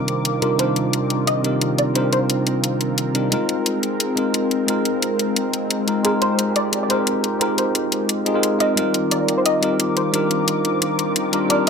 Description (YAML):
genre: liquid drum and bass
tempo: 176 BPM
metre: 4/4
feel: straight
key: C minor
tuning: A4 = 438 Hz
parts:
  - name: tine electric piano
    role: accompaniment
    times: 0.0-11.7 s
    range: C3 to Bb4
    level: -21 LUFS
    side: equal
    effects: phaser, low-pass filter, dub echo
  - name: lush unison pad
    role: sustained chords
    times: 0.0-11.7 s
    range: Eb3 to D6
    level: -24 LUFS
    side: left 1 dB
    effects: chorus, phaser
  - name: electronic hi-hat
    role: drums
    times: 0.1-11.7 s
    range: none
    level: -22 LUFS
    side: left 2 dB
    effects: overdrive
  - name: soft round pluck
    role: melody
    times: 0.4-2.4, 6.0-11.7 s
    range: Ab4 to Eb5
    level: -24 LUFS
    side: equal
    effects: ensemble chorus, ping-pong delay
room: moderate plate reverb, RT60 1.9 s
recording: none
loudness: -17 LUFS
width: side -6 dB against mid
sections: 0.0-8.8 A section; 8.8-11.7 B section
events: build-up 8.8-11.7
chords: 0.0 Cm11; 3.3 Ab69; 8.8 Cm11